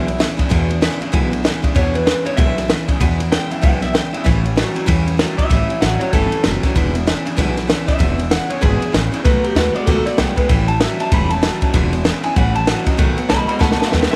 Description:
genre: rockabilly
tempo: 192 BPM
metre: 4/4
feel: swing 61% on 8ths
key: E mixolydian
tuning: A4 = 440 Hz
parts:
  - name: electric guitar through a small old amp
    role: melody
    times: 0.0-14.2 s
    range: G4 to B5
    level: -25 LUFS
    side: equal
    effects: spring reverb, tape echo
  - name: picked steel-string acoustic guitar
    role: accompaniment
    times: 0.0-14.2 s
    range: E2 to F#4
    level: -25 LUFS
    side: equal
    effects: none
  - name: electric guitar through a small old amp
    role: riff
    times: 0.0-14.2 s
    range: E2 to G#3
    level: -27 LUFS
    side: equal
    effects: none
  - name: upright bass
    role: bass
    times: 0.0-14.2 s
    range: E1 to E2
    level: -23 LUFS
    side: equal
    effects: none
  - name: compact cocktail drum kit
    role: drums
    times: 0.1-14.2 s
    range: kick drum, ride cymbal, snare drum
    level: -20 LUFS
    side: equal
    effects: none
room: small room ambience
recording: none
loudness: -17 LUFS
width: mono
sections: 0.0-14.2 A section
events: clean electric guitar solo 0.0-14.2; drum fill 13.6-14.2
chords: 0.0 E7; 4.3 A7; 6.8 E7; 9.2 B7; 10.5 A7; 11.7 E7; 12.4 A7; 13.0 B7

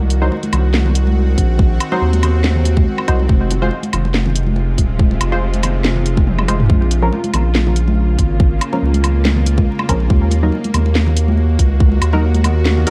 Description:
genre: deep dubstep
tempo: 141 BPM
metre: 4/4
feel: swing 54% on 16ths, half-time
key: Bb minor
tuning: A4 = 440 Hz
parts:
  - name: bowed-like drone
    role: sustained chords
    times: 0.0-12.9 s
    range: C3 to Gb4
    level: -26 LUFS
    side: equal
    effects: built-in reverb
  - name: saturated sub bass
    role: bass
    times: 0.0-12.9 s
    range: Eb1 to Eb2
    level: -17 LUFS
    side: equal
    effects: none
  - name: congas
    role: percussion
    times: 0.0-12.8 s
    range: none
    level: -26 LUFS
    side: equal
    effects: dub echo
  - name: garage drum kit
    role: drums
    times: 0.1-12.9 s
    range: hi-hat, snare drum, toms, woodblock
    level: -22 LUFS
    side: equal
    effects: none
  - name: filtered dub chord stab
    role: stabs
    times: 0.2-12.9 s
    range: F3 to C5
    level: -26 LUFS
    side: equal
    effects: chorus, cassette tape, dub echo
  - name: electronic kick drum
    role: drums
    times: 1.4-11.9 s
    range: none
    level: -16 LUFS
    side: equal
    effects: none
room: light reverb, digital ambience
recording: dark, warm production, vinyl crackle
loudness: -15 LUFS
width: mono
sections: 0.0-12.9 A section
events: kick drops out 6.3-6.7; drum fill 6.3-6.7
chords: 0.0 Cdim; 3.3 Fm; 6.7 Bbm; 10.1 Ebm

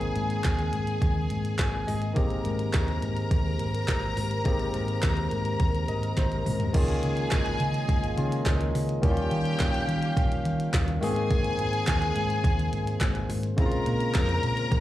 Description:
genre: disco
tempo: 105 BPM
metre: 4/4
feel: straight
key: unclear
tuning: A4 = 444 Hz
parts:
  - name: rich studio string section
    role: second line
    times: 0.0-14.8 s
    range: G4 to Bb5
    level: -32 LUFS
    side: left 1 dB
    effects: slapback echo
  - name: barky tine electric piano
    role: accompaniment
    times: 0.0-14.8 s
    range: Db3 to Ab5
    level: -31 LUFS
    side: left 2 dB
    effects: none
  - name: hollow-body short-scale fingered electric bass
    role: bass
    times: 0.0-14.8 s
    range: Ab1 to Eb3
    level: -29 LUFS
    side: equal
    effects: none
  - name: glitchy drum kit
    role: drums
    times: 0.0-14.8 s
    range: crash cymbal, handclaps, hi-hat, kick drum, snare drum, toms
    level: -27 LUFS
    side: equal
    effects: none
  - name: group handclap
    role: percussion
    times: 0.4-14.3 s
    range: none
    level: -41 LUFS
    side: right 2 dB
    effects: none
  - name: mellow French horn section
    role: sustained chords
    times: 2.2-14.8 s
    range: Db3 to F5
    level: -39 LUFS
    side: right 2 dB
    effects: none
room: little or no reverb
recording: live gig heard through the venue's PA, club reverb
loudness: -24 LUFS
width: side -14 dB against mid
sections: 0.0-6.7 A section; 6.7-14.8 B section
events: tine electric piano fill 1.3-2.2, 5.6-6.7; drum fill 6.2-6.7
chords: 0.0 Abmaj9; 6.7 Db69; 9.0 Eb9; 11.0 Abadd9; 13.6 Bbm9

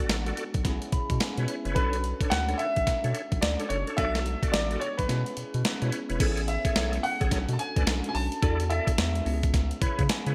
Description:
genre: R&B, new jack swing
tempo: 108 BPM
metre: 4/4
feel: swing 62% on 16ths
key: B dorian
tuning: A4 = 444 Hz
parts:
  - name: clear baby grand piano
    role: melody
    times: 0.0-9.8 s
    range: B4 to A5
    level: -34 LUFS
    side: equal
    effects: lush chorus, digital delay
  - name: bell-like tine electric piano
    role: accompaniment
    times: 0.0-10.3 s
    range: B3 to B5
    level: -38 LUFS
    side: equal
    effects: phaser
  - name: bright tonewheel organ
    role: stabs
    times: 0.0-10.3 s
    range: D4 to D5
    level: -38 LUFS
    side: equal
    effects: chorus vibrato, fast rotary speaker
  - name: round analog bass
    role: bass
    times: 0.1-10.3 s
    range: E1 to C#3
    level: -32 LUFS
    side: equal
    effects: none
  - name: clean 12-bit digital drum machine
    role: drums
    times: 0.1-10.3 s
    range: crash cymbal, hi-hat, kick drum, snare drum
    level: -31 LUFS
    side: equal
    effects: gated reverb
room: moderate plate reverb, RT60 2.1 s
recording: bright 1980s-style digital production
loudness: -27 LUFS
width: mono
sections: 0.0-6.2 A section; 6.2-10.3 B section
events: tine electric piano fill 0.6-1.8, 9.5-10.3; kick muted 5.1-6.2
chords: 0.0 Bm7/A; 0.6 C#m7/B; 1.8 Bm9; 4.0 E9sus4/B; 5.1 C#m7/B; 6.2 Amaj7; 7.3 Bm7; 8.4 E7sus4; 9.3 C#m7

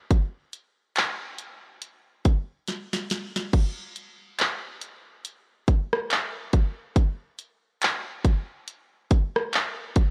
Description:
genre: R&B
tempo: 70 BPM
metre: 4/4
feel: swing 58% on 16ths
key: none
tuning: none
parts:
  - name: trap drum kit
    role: drums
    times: 0.1-10.1 s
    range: crash cymbal, handclaps, hi-hat, kick drum, rim click, snare drum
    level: -25 LUFS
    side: equal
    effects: none
room: little or no reverb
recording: worn, warbling old tape, cassette tape, warbly pitch drift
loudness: -26 LUFS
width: mono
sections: 0.0-3.5 A section; 3.5-10.1 B section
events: drum fill 2.7-3.5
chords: none

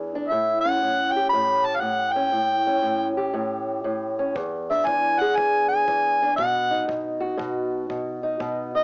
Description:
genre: acoustic country blues, solo or duo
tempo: 118 BPM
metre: 4/4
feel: swing 66% on 8ths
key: unclear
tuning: A4 = 440 Hz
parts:
  - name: fingerpicked old ladder-braced acoustic guitar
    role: accompaniment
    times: 0.0-8.8 s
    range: E2 to G#4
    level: -28 LUFS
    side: equal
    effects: cassette tape
  - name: overdriven harmonica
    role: melody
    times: 0.3-8.8 s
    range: D#5 to B5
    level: -23 LUFS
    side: equal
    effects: cassette tape
  - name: kick drum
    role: drums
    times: 4.4-8.6 s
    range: none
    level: -47 LUFS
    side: equal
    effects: cassette tape
room: light reverb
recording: home recording on cassette, small speaker sound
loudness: -23 LUFS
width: mono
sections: 0.0-8.8 A section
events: none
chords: 0.3 A7; 4.3 E7; 6.4 B

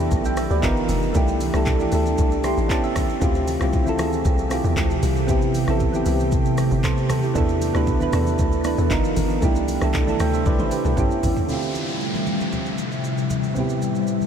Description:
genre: amapiano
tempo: 116 BPM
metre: 4/4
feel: straight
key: A minor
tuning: A4 = 442 Hz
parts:
  - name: soft electric-piano-like synth keys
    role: accompaniment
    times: 0.0-14.3 s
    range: A2 to C6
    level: -23 LUFS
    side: right 2 dB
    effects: chorus
  - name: ethereal airy pad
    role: sustained chords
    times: 0.0-14.3 s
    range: D2 to E5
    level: -25 LUFS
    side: left 1 dB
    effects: ensemble chorus, built-in reverb, phaser
  - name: hollow log drum bass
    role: bass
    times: 0.0-11.4 s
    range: F1 to E2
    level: -24 LUFS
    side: equal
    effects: none
  - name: deep house drum kit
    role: drums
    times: 0.1-14.3 s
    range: handclaps, hi-hat, kick drum, rim click, shaker, toms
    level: -25 LUFS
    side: equal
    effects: none
  - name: congas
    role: percussion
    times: 0.1-14.3 s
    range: none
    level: -32 LUFS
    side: left 2 dB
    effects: none
  - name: downlifter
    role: sound effects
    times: 11.5-14.3 s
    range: none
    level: -32 LUFS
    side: equal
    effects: none
room: moderate huge ambient reverb, RT60 6.9 s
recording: dreamy mix soaked in reverb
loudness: -19 LUFS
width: side -8 dB against mid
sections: 0.0-11.5 A section; 11.5-14.3 B section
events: drop 0.0-11.5; synth keys fill 2.2-3.2; drum fill 10.5-11.5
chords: 0.0 E7sus4; 0.6 G7alt; 1.1 C69; 2.7 A7; 3.2 Dm11; 5.3 Am9; 7.4 E7sus4; 8.9 G7alt; 9.4 C69; 11.0 A7; 11.5 Dm11; 13.6 Am9

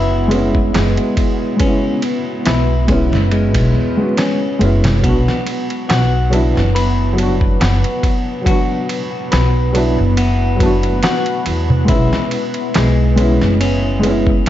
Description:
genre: trip hop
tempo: 70 BPM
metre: 4/4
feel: swing 54% on 16ths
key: B dorian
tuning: A4 = 439 Hz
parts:
  - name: felt-muted upright piano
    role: accompaniment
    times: 0.0-14.5 s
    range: F#3 to F#4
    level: -19 LUFS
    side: equal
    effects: tremolo, vintage 12-bit sampler grit, tape echo
  - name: deep dark ambient pad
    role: sustained chords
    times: 0.0-14.5 s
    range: B3 to B4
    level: -23 LUFS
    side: equal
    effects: chorus, built-in reverb
  - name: semi-hollow electric guitar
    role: arpeggios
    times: 0.0-14.5 s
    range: G#3 to B4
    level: -22 LUFS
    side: left 3 dB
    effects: vintage 12-bit sampler grit, ping-pong delay
  - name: upright bass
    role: bass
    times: 0.0-14.5 s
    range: F#1 to E2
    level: -16 LUFS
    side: equal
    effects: none
  - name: wind-like tuned noise texture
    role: texture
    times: 0.0-5.1 s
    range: F#4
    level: -35 LUFS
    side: right 8 dB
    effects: none
  - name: dusty soul sampler-style drum kit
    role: drums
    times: 0.3-14.5 s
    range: kick drum, ride cymbal, snare drum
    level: -20 LUFS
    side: equal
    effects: none
  - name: darbuka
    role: percussion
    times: 0.7-12.9 s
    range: none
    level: -20 LUFS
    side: right 2 dB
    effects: none
room: little or no reverb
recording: vinyl crackle, nothing above 7.7 kHz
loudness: -13 LUFS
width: side -12 dB against mid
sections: 0.0-5.0 A section; 5.0-14.5 B section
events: none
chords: 0.0 C#m7; 5.0 Bm; 11.9 C#m7

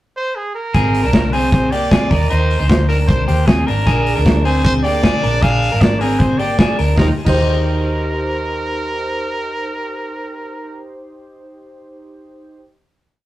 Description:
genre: jangly indie pop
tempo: 154 BPM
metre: 4/4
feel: straight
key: Eb major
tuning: A4 = 439 Hz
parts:
  - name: brilliant trumpet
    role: melody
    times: 0.2-10.8 s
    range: Ab4 to F5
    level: -22 LUFS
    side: right 1 dB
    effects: none
  - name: electric guitar at the edge of break-up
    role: arpeggios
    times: 0.7-8.1 s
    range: Bb3 to C5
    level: -19 LUFS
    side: equal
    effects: tape echo
  - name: vintage muted fingered electric bass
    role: bass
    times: 0.7-11.5 s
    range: Ab1 to Eb2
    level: -18 LUFS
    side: equal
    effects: none
  - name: modern studio drum kit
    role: drums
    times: 0.7-7.4 s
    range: crash cymbal, hi-hat, kick drum, snare drum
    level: -16 LUFS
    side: equal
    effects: none
  - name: warbly lo-fi synth keys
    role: accompaniment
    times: 3.9-12.6 s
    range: D4 to C5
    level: -25 LUFS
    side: equal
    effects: chorus
room: wet studio reverb, RT60 0.5 s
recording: rough rehearsal-room recording, tube saturation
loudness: -13 LUFS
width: side -15 dB against mid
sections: 0.0-0.7 pickup bar; 0.7-7.0 bridge; 7.0-10.1 final chord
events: none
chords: 0.0 N.C.; 0.7 Ab; 2.1 Eb5; 3.9 Bb7; 7.0 Eb6

